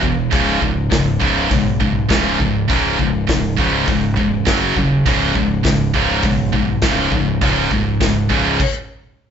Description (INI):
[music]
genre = heavy metal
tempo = 101 BPM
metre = 4/4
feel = straight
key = C# minor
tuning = A4 = 439 Hz
[part]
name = heavy high-gain guitar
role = riff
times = 0.0-8.6 s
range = C#2 to F#3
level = -20 LUFS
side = left 7 dB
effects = distortion
[part]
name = high-gain distorted guitar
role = riff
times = 0.0-8.6 s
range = C#2 to F#3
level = -18 LUFS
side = right 5 dB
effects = distortion
[part]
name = growling fingered electric bass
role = bass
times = 0.0-8.6 s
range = C#1 to B1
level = -24 LUFS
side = equal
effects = overdrive
[part]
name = modern studio drum kit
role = drums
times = 0.0-8.7 s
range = crash cymbal, hi-hat, kick drum, snare drum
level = -21 LUFS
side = equal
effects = none
[sound]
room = moderate studio reverb, RT60 0.9 s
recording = band playing live in one room, nothing above 7.8 kHz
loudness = -14 LUFS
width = side -8 dB against mid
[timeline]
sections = 0.0-9.3 A section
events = stop 8.6-9.3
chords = 0.3 C#5; 4.5 F#5; 5.1 C#5; 8.6 N.C.